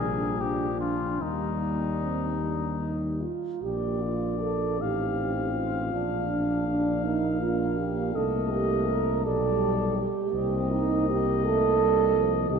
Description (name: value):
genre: classical, hymn-like piece for brass band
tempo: 48-57 BPM (dotted quarters)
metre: 6/8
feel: rubato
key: Eb major, Bb major from 3.6 s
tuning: A4 = 440 Hz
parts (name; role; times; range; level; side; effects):
- warm cornet; melody; 0.0-12.6 s; Eb4 to F5; -33 LUFS; left 9 dB; none
- mellow French horn section; second line; 0.0-12.6 s; Bb3 to Bb4; -28 LUFS; right 6 dB; none
- mellow euphonium; accompaniment; 0.0-12.6 s; F3 to Eb4; -33 LUFS; left 2 dB; none
- mellow trombone; accompaniment; 0.0-12.6 s; Eb3 to D4; -35 LUFS; right 2 dB; none
- mellow tuba; bass; 0.0-12.6 s; A1 to Eb2; -30 LUFS; equal; none
room: moderate cathedral reverb, RT60 4.0 s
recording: dark, warm production, lossy compression artefacts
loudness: -24 LUFS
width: side -6 dB against mid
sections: 0.0-3.6 A section; 3.6-12.6 B section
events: none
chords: 0.0 Bb; 1.2 Eb; 3.6 Bb; 4.8 F7/A; 5.9 Bb; 8.2 Cm7; 9.3 G/B; 10.3 Cm7